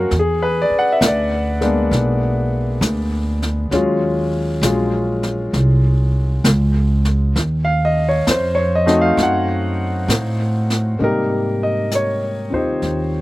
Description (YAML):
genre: jazz ballad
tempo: 66 BPM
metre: 4/4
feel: swing 66% on 8ths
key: unclear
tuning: A4 = 440 Hz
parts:
  - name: warm concert grand piano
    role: accompaniment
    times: 0.0-13.2 s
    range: C3 to Ab5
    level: -18 LUFS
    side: left 1 dB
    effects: slapback echo
  - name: upright bass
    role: bass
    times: 0.0-13.2 s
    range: Bb1 to A2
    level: -18 LUFS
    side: equal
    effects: none
  - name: jazz brush drum kit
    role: drums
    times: 0.1-13.2 s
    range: brushed snare drum, hi-hat, snare drum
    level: -22 LUFS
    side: equal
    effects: none
room: little or no reverb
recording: recorded outdoors, with no room sound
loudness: -15 LUFS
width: side -18 dB against mid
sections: 0.0-11.0 A section; 11.0-13.2 B section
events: none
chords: 0.1 E7#11; 3.7 Ebm11; 7.4 Ebm9b5; 11.0 Abmaj9